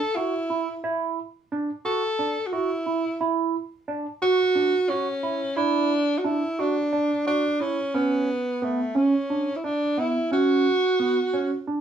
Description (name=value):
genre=progressive instrumental, progressive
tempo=177 BPM (eighths)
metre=7/8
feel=straight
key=D major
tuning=A4 = 440 Hz
part: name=clear tenor saxophone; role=melody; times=0.0-11.6 s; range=A3 to A4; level=-23 LUFS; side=right 1 dB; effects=none
part: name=barky tine electric piano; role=arpeggios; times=0.2-11.8 s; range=B3 to F#4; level=-26 LUFS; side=right 4 dB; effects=overdrive, phaser
room=moderate studio ambience, RT60 0.5 s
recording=band playing live in one room, small room ambience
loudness=-22 LUFS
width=side -8 dB against mid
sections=0.0-7.9 A section; 7.9-11.8 B section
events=none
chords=0.0 Dadd9; 7.9 Dmaj7